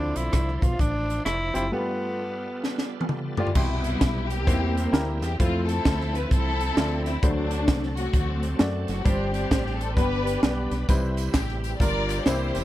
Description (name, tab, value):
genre	uptempo gospel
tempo	131 BPM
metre	4/4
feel	swing 63% on 8ths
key	C major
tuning	A4 = 440 Hz
part	breathy tenor saxophone	melody	0.0-3.1 s	B3 to F4	-29 LUFS	equal	none
part	clear baby grand piano	accompaniment	0.0-12.6 s	G2 to C6	-30 LUFS	left 1 dB	none
part	bright tonewheel organ	sustained chords	0.0-12.6 s	E3 to E5	-36 LUFS	right 3 dB	chorus vibrato, slow rotary speaker
part	fingered electric bass	bass	0.0-12.6 s	E1 to F#2	-28 LUFS	equal	none
part	crisp fusion drum kit	drums	0.2-12.6 s	crash cymbal, hi-hat, kick drum, rim click, snare drum, toms	-25 LUFS	equal	none
part	warm studio string section	melody	3.4-12.6 s	F#3 to D5	-29 LUFS	left 2 dB	none
part	tambourine and handclaps	percussion	10.9-12.6 s	none	-40 LUFS	equal	none
room	little or no reverb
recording	none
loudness	-22 LUFS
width	side -14 dB against mid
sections	0.0-3.6 A section; 3.6-12.6 B section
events	break 1.7-3.6; drum fill 2.6-3.6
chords	0.0 Dm9; 1.7 G9; 3.6 Cmaj7; 4.5 C7/E; 5.4 Fmaj7; 7.2 D7; 9.1 Gsus4; 10.0 G; 10.9 Cmaj7; 11.8 Gm7